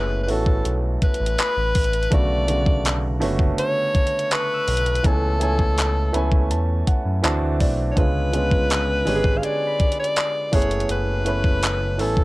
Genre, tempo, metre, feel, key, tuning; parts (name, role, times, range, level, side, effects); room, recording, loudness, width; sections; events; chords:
contemporary R&B; 82 BPM; 4/4; straight; F# minor; A4 = 440 Hz
warm alto saxophone; melody; 0.0-12.2 s; A4 to E#5; -24 LUFS; left 1 dB
warm grand piano; accompaniment; 0.0-12.2 s; C#3 to B5; -25 LUFS; right 2 dB
smooth gliding synth bass; bass; 0.0-12.2 s; F#1 to F#2; -23 LUFS; equal
clean 12-bit digital drum machine; drums; 0.3-12.2 s; handclaps, hi-hat, kick drum; -21 LUFS; equal
concert harp; texture; 1.4-12.2 s; F#5 to E6; -34 LUFS; left 1 dB; analog delay
small room ambience; dry, gritty hardware recording; -18 LUFS; side -20 dB against mid
0.0-12.2 A section
grand piano fill 5.8-8.0
0.0 F#m11; 2.1 Bm9; 5.0 Amaj9/C#; 7.2 D9; 8.0 C#7b9; 10.5 F#m11